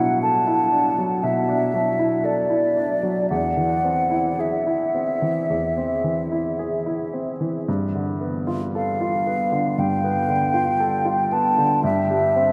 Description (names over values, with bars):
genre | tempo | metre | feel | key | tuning
classical, impressionist duo for flute and grand piano | 53-60 BPM | 4/4 | rubato | unclear | A4 = 440 Hz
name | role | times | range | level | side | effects
mellow hollow silver concert flute | melody | 0.0-12.5 s | D5 to A5 | -24 LUFS | equal | none
clear grand piano | accompaniment | 0.0-12.5 s | E2 to A4 | -25 LUFS | equal | none
room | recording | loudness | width
wet huge ambient reverb, RT60 8.6 s | in a vast, echoing space | -22 LUFS | mono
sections
0.0-12.5 A section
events
none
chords
0.0 Bm7; 3.3 Eaug; 7.7 G9; 11.8 C/G